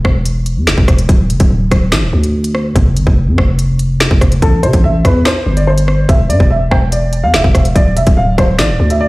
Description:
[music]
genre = hip hop, drill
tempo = 144 BPM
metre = 4/4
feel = half-time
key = A minor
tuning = A4 = 444 Hz
[part]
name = growling 808-style bass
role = bass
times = 0.0-9.1 s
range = D1 to C3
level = -13 LUFS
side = equal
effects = none
[part]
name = drill drum kit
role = drums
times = 0.0-9.0 s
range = finger snaps, hi-hat, kick drum, rim click, snare drum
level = -12 LUFS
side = equal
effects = none
[part]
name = dark upright piano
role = melody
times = 4.4-9.1 s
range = A4 to G5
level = -16 LUFS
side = equal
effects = low-pass filter, tape echo
[sound]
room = studio reverb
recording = played on a big sound system in a bare room, stone room reverb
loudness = -9 LUFS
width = side -21 dB against mid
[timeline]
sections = 0.0-9.1 A section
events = break 0.0-4.4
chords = 0.0 N.C.; 4.4 Am; 6.1 N.C.

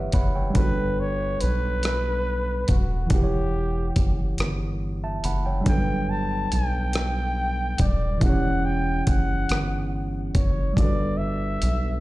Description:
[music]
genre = slow six-eight R&B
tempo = 47 BPM (dotted quarters)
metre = 6/8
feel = straight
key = E dorian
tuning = A4 = 440 Hz
[part]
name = tine electric piano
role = accompaniment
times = 0.0-12.0 s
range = E3 to B5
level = -29 LUFS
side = right 2 dB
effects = none
[part]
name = rubbery square bass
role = bass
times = 0.0-12.0 s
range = D#1 to B1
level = -25 LUFS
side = equal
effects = none
[part]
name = dusty soul sampler-style drum kit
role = drums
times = 0.1-11.8 s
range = hi-hat, kick drum, rim click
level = -24 LUFS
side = equal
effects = vintage 12-bit sampler grit
[part]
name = breathy flugelhorn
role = melody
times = 0.6-12.0 s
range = F#4 to A5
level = -29 LUFS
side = left 1 dB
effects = ping-pong delay
[sound]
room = little or no reverb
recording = played on a big sound system in a bare room, large studio reverb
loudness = -21 LUFS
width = side -18 dB against mid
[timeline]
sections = 0.0-12.0 A section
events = tine electric piano fill 0.0-0.6; break 4.4-5.7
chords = 0.0 Em69; 0.6 Gmaj9; 3.1 Em69; 5.7 Gmaj9; 8.2 Em69; 10.8 Gmaj9

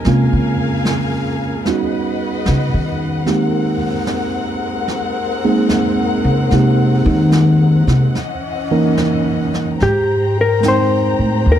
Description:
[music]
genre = jazz ballad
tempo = 74 BPM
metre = 4/4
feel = swing 68% on 8ths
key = Ab major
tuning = A4 = 440 Hz
[part]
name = tine electric piano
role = accompaniment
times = 0.0-11.6 s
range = Fb3 to G5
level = -18 LUFS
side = right 3 dB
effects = none
[part]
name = warm studio string section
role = sustained chords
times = 0.0-11.6 s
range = Db3 to Bb5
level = -23 LUFS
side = left 4 dB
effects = none
[part]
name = jazz brush drum kit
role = drums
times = 0.0-11.6 s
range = brushed snare drum, hi-hat, snare drum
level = -26 LUFS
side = right 1 dB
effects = none
[part]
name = upright bass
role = bass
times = 0.1-11.6 s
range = Eb2 to Eb3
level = -15 LUFS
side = left 1 dB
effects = none
[part]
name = hollow-body jazz guitar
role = melody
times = 9.8-11.6 s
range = G4 to C5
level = -15 LUFS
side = left 3 dB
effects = plate reverb
[sound]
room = light reverb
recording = dark, warm production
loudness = -14 LUFS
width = side -10 dB against mid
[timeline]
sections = 0.0-9.8 A section; 9.8-11.6 B section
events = upright bass solo 0.0-9.8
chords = 0.0 Bbm7; 1.7 Eb7alt; 3.3 Abmaj9; 8.2 Eb5; 9.8 Abmaj9

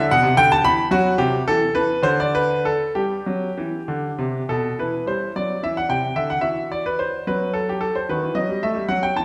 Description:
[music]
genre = classical, baroque-style suite movement for grand piano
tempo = 64-77 BPM (dotted quarters)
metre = 6/8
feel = rubato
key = E minor from 4.8 s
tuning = A4 = 440 Hz
[part]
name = bright baby grand piano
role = solo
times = 0.0-9.2 s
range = B2 to B5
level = -21 LUFS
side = equal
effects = none
[sound]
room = wet recital hall reverb, RT60 1.6 s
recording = heard from further back in the room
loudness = -21 LUFS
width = mono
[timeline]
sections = 0.0-4.8 A section; 4.8-9.2 A section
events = none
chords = 0.4 D69; 1.2 Cmaj7; 2.0 N.C.; 4.8 Em; 6.4 Esus4; 8.1 B7b13/D#

